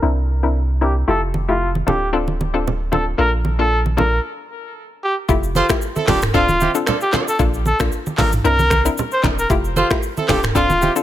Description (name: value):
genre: afrobeats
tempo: 114 BPM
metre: 4/4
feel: swing 55% on 16ths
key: F major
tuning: A4 = 438 Hz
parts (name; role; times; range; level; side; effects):
- hollow square pluck; accompaniment; 0.0-11.0 s; A3 to Bb4; -22 LUFS; left 5 dB; chorus, low-pass filter
- punchy sub bass; bass; 0.0-10.9 s; D1 to C2; -21 LUFS; right 1 dB; none
- clear trumpet; melody; 0.8-10.9 s; F4 to C5; -21 LUFS; equal; low-pass filter, ping-pong delay
- congas; percussion; 1.3-11.0 s; none; -23 LUFS; right 3 dB; none
- afro-pop drum kit; drums; 5.3-11.0 s; finger snaps, handclaps, hi-hat, kick drum, rim click, shaker, toms; -21 LUFS; right 1 dB; none
- warm horn section; second line; 5.6-10.9 s; C4 to C5; -23 LUFS; right 5 dB; none
room: digital ambience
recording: none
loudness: -15 LUFS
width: side -12 dB against mid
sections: 0.0-5.3 A section; 5.3-11.0 B section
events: filter sweep 0.0-5.3; stop 4.2-5.3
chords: 0.0 C9; 1.1 Fmaj9; 1.9 Dm7; 3.2 Bbmaj7; 4.2 N.C.; 5.3 Fmaj9; 6.1 Dm7; 7.4 Bbmaj7; 8.4 C9; 9.5 Fmaj9; 10.3 Dm7